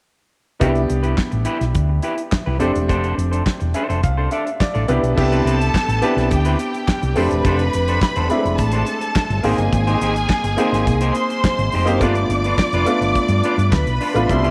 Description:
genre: disco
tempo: 105 BPM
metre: 4/4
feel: straight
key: C major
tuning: A4 = 440 Hz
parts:
  - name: clear grand piano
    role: accompaniment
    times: 0.6-14.5 s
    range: B2 to F5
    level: -24 LUFS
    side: equal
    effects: none
  - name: electric guitar at the edge of break-up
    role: accompaniment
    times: 0.6-14.5 s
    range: C4 to D5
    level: -29 LUFS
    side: equal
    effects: none
  - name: fingered electric bass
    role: bass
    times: 0.6-14.5 s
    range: E1 to G2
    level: -22 LUFS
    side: equal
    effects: tube saturation
  - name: damped 70s drum kit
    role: drums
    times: 0.6-14.5 s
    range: crash cymbal, handclaps, hi-hat, kick drum, snare drum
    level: -25 LUFS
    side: equal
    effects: none
  - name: clear studio string section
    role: second line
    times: 5.2-14.5 s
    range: G4 to D6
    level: -25 LUFS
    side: equal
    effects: none
room: moderate echo chamber reverb, RT60 2.3 s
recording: none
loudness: -18 LUFS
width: mono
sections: 0.6-5.2 A section; 5.2-14.5 B section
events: grand piano fill 3.5-5.2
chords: 0.6 Cmaj7; 2.6 F6; 4.9 Cmaj7; 7.2 F6; 9.4 Abmaj7; 12.0 G7

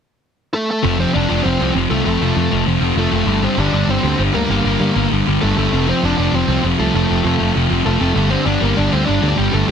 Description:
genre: punk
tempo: 197 BPM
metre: 4/4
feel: straight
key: unclear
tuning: A4 = 440 Hz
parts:
  - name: smooth overdriven lead guitar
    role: melody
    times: 0.5-9.7 s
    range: G3 to D5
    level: -21 LUFS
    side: equal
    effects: tape echo
  - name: overdriven semi-hollow guitar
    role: riff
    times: 0.8-9.7 s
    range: F2 to G3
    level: -19 LUFS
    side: left 12 dB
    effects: none
  - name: sludgy distorted guitar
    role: riff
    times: 0.8-9.7 s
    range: F2 to G3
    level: -20 LUFS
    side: right 11 dB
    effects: overdrive
  - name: picked electric bass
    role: bass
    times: 0.8-9.7 s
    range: F1 to G2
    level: -20 LUFS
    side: equal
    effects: none
room: light reverb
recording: dense, heavily limited modern master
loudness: -14 LUFS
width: side -7 dB against mid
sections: 0.8-9.7 A section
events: none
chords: 0.0 N.C.; 0.8 F; 3.3 Gm; 5.7 F; 8.2 G5

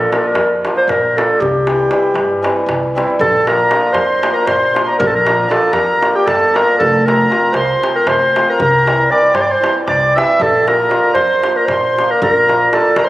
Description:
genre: balkan folk, Balkan wedding band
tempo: 234 BPM (eighths)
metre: 7/8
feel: straight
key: unclear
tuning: A4 = 445 Hz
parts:
  - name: mellow clarinet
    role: melody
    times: 0.0-13.1 s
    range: G4 to E5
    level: -13 LUFS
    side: equal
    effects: none
  - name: hammered dulcimer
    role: accompaniment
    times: 0.0-13.1 s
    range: E3 to F4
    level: -18 LUFS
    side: equal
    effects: none
  - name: upright bass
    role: bass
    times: 0.0-13.1 s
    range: F1 to G2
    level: -24 LUFS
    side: equal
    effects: none
  - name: darbuka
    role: percussion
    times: 0.1-13.1 s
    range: none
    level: -22 LUFS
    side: equal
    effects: none
  - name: accordion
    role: second line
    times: 3.2-13.1 s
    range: G5 to E6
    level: -18 LUFS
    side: equal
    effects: light tremolo tuning
room: moderate concert hall reverb, RT60 1.9 s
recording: recorded on a phone in the room, club reverb, compression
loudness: -11 LUFS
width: side -16 dB against mid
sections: 0.0-3.2 A section; 3.2-13.1 B section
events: none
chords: 0.0 Bb; 1.4 C; 3.2 Bb; 6.8 F; 8.6 C; 10.4 Bb

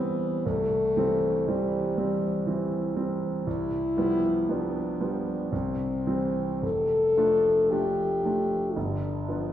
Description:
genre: classical, romantic duo for French horn and grand piano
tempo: 52-60 BPM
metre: 3/4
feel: rubato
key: C major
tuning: A4 = 440 Hz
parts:
  - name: mellow French horn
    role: melody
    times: 0.0-9.5 s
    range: E3 to A4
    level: -26 LUFS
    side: left 2 dB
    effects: none
  - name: clear concert grand piano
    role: accompaniment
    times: 0.0-9.5 s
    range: F1 to D4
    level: -28 LUFS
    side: right 2 dB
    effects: none
room: wet recital hall reverb, RT60 1.3 s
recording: recorded in a church or concert hall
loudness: -24 LUFS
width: side -11 dB against mid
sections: 0.0-9.5 A section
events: none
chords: 0.5 C; 3.5 G7/C; 5.5 C; 6.6 Dm/F; 8.8 G7

